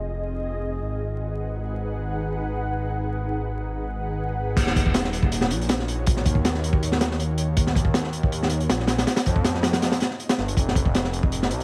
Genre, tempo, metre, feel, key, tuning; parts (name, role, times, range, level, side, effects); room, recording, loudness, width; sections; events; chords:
drum and bass, jungle; 160 BPM; 4/4; straight; Eb minor; A4 = 441 Hz
ethereal airy pad; sustained chords; 0.0-11.6 s; Eb4 to Gb5; -35 LUFS; equal; ensemble chorus, built-in reverb, tremolo
dark detuned saw bass; bass; 0.0-11.6 s; Eb1 to F2; -29 LUFS; equal
crunchy breakbeat drum kit; drums; 4.6-11.6 s; crash cymbal, hi-hat, kick drum, snare drum; -24 LUFS; equal
little or no reverb; vinyl crackle; -24 LUFS; mono
0.0-4.6 A section; 4.6-11.6 B section
filter sweep on ambient pad 0.0-4.6; drop 4.6-11.6
0.0 Fm7; 0.8 Abm7; 4.6 Ebm7; 9.1 Fm7